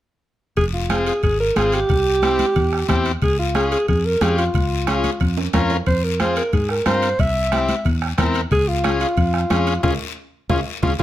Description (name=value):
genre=latin, cumbia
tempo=181 BPM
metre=4/4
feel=straight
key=F harmonic minor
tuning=A4 = 438 Hz
part: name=breathy alto saxophone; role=melody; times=0.6-11.0 s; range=F4 to E5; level=-21 LUFS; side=equal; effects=none
part: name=fingered electric bass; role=bass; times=0.6-11.0 s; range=F1 to Ab2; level=-22 LUFS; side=equal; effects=none
part: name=bombo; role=percussion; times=0.6-11.0 s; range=none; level=-23 LUFS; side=equal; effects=none
part: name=guiro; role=percussion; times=0.6-11.0 s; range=none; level=-34 LUFS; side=left 8 dB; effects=none
part: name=timbales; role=percussion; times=0.6-11.0 s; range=none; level=-32 LUFS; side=right 8 dB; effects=none
part: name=combo organ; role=accompaniment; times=0.9-11.0 s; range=C4 to Bb4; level=-23 LUFS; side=left 3 dB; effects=none
part: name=congas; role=percussion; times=0.9-11.0 s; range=none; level=-27 LUFS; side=right 1 dB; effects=none
room=moderate studio reverb, RT60 0.8 s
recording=none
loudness=-17 LUFS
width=side -13 dB against mid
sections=0.6-11.0 A section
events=drum fill 5.4-5.9; band accent 9.8-11.0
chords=0.6 Fm; 1.9 C; 3.2 Db; 5.9 Fm; 7.2 C7; 8.5 Db